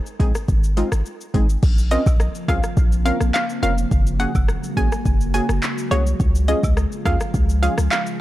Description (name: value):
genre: dancehall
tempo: 105 BPM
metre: 4/4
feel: straight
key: Bb minor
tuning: A4 = 440 Hz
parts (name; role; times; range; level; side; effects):
- afro-pop drum kit; drums; 0.1-8.2 s; crash cymbal, handclaps, hi-hat, kick drum, rim click, shaker; -20 LUFS; equal; none
- punchy chord stab; accompaniment; 0.2-7.8 s; Ab3 to Bb4; -27 LUFS; equal; chorus, sidechain pumping
- warm 808-style bass; bass; 0.2-7.9 s; F1 to Eb2; -20 LUFS; equal; none
- glassy FM pad; sustained chords; 2.2-8.2 s; Db3 to Ab4; -28 LUFS; equal; ensemble chorus, built-in reverb, sidechain pumping
- hollow square pluck; melody; 1.9-8.0 s; Db5 to Ab5; -25 LUFS; right 1 dB; chorus, tape echo
- cabasa and woodblock; percussion; 1.9-8.1 s; none; -39 LUFS; right 3 dB; none
room: little or no reverb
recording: dark, warm production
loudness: -17 LUFS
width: side -15 dB against mid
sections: 0.0-1.6 A section; 1.6-8.2 B section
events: none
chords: 0.0 Ab; 1.6 Bbmadd9; 3.9 Gbadd9; 6.2 Db